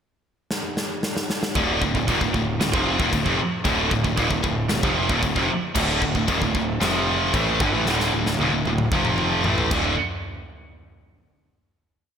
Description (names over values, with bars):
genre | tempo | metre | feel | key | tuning
heavy metal | 114 BPM | 4/4 | straight | D phrygian | A4 = 444 Hz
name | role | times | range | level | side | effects
big rock drum kit | drums | 0.5-9.8 s | china cymbal, crash cymbal, kick drum, snare drum, toms | -26 LUFS | left 1 dB | none
heavy high-gain guitar | riff | 1.6-9.9 s | D2 to A3 | -24 LUFS | right 8 dB | distortion
scooped high-gain guitar | riff | 1.6-9.9 s | D2 to A3 | -24 LUFS | left 8 dB | distortion
overdriven picked electric bass | bass | 1.6-10.0 s | D1 to A1 | -27 LUFS | equal | none
room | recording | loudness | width
moderate lush hall reverb, RT60 1.8 s, small room ambience | big arena sound | -20 LUFS | side -7 dB against mid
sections
0.0-1.6 pickup bar; 1.6-10.0 riff; 10.0-12.1 final hit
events
drum fill 0.5-1.6, 7.9-10.0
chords
0.0 N.C.; 1.6 Dm; 6.8 F5; 7.3 D5; 8.9 F5; 9.4 A5; 9.7 D5; 10.0 N.C.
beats
0.50 1.03 | 1.55 2.08 2.60 3.13 | 3.66 4.18 4.71 5.23 | 5.76 6.28 6.81 7.34 | 7.86 8.39 8.92 9.45